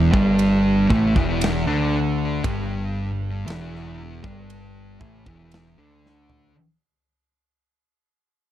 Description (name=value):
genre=stoner and doom metal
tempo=58 BPM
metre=4/4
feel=straight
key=unclear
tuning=A4 = 440 Hz
part: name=thick fuzz guitar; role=riff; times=0.0-6.5 s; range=E2 to D4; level=-22 LUFS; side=left 2 dB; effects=distortion
part: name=thick fuzz guitar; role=riff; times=0.0-6.5 s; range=E2 to D4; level=-25 LUFS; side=right 8 dB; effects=distortion
part: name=growling picked electric bass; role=bass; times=0.0-6.5 s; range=E1 to D2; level=-27 LUFS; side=equal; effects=overdrive
part: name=big rock drum kit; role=drums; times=0.1-6.5 s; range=kick drum, ride cymbal, snare drum, toms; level=-26 LUFS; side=equal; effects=none
room=little or no reverb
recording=dry, close 1970s-style studio recording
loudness=-18 LUFS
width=side -12 dB against mid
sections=0.0-6.5 A section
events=fade-out 0.0-6.5; drum fill 6.0-6.5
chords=0.0 G5